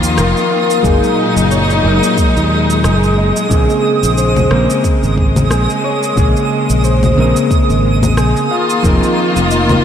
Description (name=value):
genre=sunset chillout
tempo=90 BPM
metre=4/4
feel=swing 57% on 16ths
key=Bb minor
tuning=A4 = 445 Hz
part: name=mellow electric guitar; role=accompaniment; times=0.0-9.8 s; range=Db3 to C5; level=-17 LUFS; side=equal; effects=auto-pan, analog delay
part: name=rich studio string section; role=sustained chords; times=0.0-9.8 s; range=Bb2 to F4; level=-17 LUFS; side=left 2 dB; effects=none
part: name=concert harp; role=arpeggios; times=0.0-9.8 s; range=Ab4 to F5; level=-19 LUFS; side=left 1 dB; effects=analog delay
part: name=fretless electric bass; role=bass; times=0.0-9.8 s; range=F1 to Eb2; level=-14 LUFS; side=right 1 dB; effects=none
part: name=electronic shaker, rim click and congas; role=drums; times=0.0-9.8 s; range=none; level=-21 LUFS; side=left 1 dB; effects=none
part: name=twinkling granular texture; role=texture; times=0.0-9.8 s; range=Eb6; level=-22 LUFS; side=right 3 dB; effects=built-in reverb
part: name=electronic kick drum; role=drums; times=0.8-9.0 s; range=none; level=-15 LUFS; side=right 1 dB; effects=none
room=moderate lush hall reverb, RT60 3.0 s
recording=dreamy mix soaked in reverb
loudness=-10 LUFS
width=side -9 dB against mid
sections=0.0-9.8 A section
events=none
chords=0.0 F7sus4; 0.8 Gb69; 3.5 Bbm9; 8.5 F7sus4